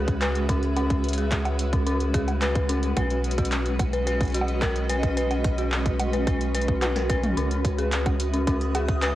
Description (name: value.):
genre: IDM.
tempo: 109 BPM.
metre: 4/4.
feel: straight.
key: C# minor.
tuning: A4 = 440 Hz.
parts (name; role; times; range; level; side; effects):
granular cloud pad; sustained chords; 0.0-9.2 s; G#3 to E5; -28 LUFS; right 1 dB; built-in reverb, vintage 12-bit sampler grit.
dark detuned synth bell; arpeggios; 0.0-9.1 s; C#4 to B4; -29 LUFS; left 2 dB; chorus, analog delay.
rubbery square bass; bass; 0.0-9.2 s; B1 to C#2; -27 LUFS; equal; tube saturation.
electro analog drum machine; drums; 0.1-9.1 s; bongos, handclaps, hi-hat, snare drum, toms; -31 LUFS; equal; none.
electronic kick drum; drums; 0.1-9.0 s; none; -26 LUFS; equal; none.
backwards swelling texture; texture; 8.1-9.2 s; D#6; -38 LUFS; right 1 dB; built-in reverb.
room: little or no reverb.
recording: dry, gritty hardware recording, transformer saturation, cassette tape.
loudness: -22 LUFS.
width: side -14 dB against mid.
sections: 0.0-9.2 A section.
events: drum fill 6.8-7.4.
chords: 0.0 C#m; 3.0 B; 7.4 C#madd9.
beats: 0.21 | 0.77 1.32 1.87 2.42 | 2.97 3.52 4.07 4.62 | 5.17 5.72 6.27 6.82 | 7.37 7.92 8.47 9.02.